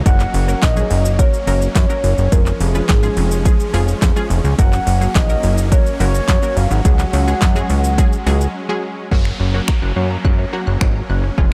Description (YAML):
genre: dance-pop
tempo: 106 BPM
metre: 4/4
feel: straight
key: F# major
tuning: A4 = 440 Hz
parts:
  - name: supersaw chords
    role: sustained chords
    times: 0.0-11.5 s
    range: E#3 to C#4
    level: -30 LUFS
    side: equal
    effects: sidechain pumping
  - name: plucky analog bass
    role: bass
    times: 0.0-11.5 s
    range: E#1 to F#2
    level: -19 LUFS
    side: equal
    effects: sidechain pumping
  - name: soft octave-layered synth lead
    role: melody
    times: 0.1-8.6 s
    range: G#4 to F#5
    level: -25 LUFS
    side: equal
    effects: chorus, phaser, delay
  - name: punchy chord stab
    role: accompaniment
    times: 0.1-11.5 s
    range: E#3 to B4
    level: -28 LUFS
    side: equal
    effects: chorus, sidechain pumping
  - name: deep house drum kit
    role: drums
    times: 0.1-11.5 s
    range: finger snaps, handclaps, hi-hat, kick drum, shaker, snare drum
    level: -18 LUFS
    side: equal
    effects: none
  - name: resonant blip pluck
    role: arpeggios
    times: 9.1-11.5 s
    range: C#5 to F#6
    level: -34 LUFS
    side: equal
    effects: phaser, sidechain pumping, delay
  - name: downlifter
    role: sound effects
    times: 9.1-11.5 s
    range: none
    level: -33 LUFS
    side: equal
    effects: none
room: little or no reverb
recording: dark, warm production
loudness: -16 LUFS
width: mono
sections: 0.0-9.1 A section; 9.1-11.5 B section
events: break 8.5-9.1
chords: 0.1 F#; 2.3 C#/E#; 4.6 F#; 6.9 C#sus4; 9.1 F#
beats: | 0.06 0.62 1.19 1.76 | 2.32 2.89 3.45 4.02 | 4.59 5.15 5.72 6.29 | 6.85 7.42 7.98 8.55 | 9.12 9.68 10.25 10.81 | 11.38